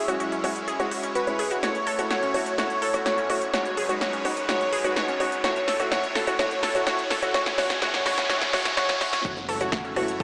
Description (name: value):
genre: progressive house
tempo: 126 BPM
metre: 4/4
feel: straight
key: F# dorian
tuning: A4 = 440 Hz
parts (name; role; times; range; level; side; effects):
- plucky unison lead; melody; 0.0-9.2 s; B4 to E5; -31 LUFS; equal; cassette tape, sidechain pumping, digital delay
- supersaw pad; sustained chords; 0.0-10.2 s; F#2 to C#5; -35 LUFS; equal; sidechain pumping
- glassy wavetable pluck; arpeggios; 0.0-10.2 s; C#4 to A5; -31 LUFS; equal; chorus, sidechain pumping, digital delay
- riser, noise sweep and impact; sound effects; 1.1-10.2 s; none; -36 LUFS; equal; none
- dark baby grand piano; stabs; 0.1-10.0 s; G#3 to C#5; -34 LUFS; equal; sidechain pumping, low-pass filter
- big-room dance drum kit; drums; 0.1-10.2 s; hi-hat, rim click, snare drum; -32 LUFS; equal; sidechain pumping on hats
- plucky analog bass; bass; 9.2-10.2 s; F#1; -42 LUFS; equal; sidechain pumping
- electronic kick drum; drums; 9.2-10.2 s; none; -36 LUFS; equal; overdrive
room: wet lush hall reverb, RT60 1.6 s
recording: high-pass filter, small speaker sound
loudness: -25 LUFS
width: mono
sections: 0.0-9.2 A section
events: build-up 0.0-9.2; filter sweep 0.0-9.2; drum fill 1.6-9.2; noise sweep 7.3-9.2; impact 9.2-10.2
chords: 0.0 C#m/F#; 1.6 F#m7; 3.5 G#m7/F#; 5.4 F#m7; 7.3 C#m/F#; 9.2 F#m7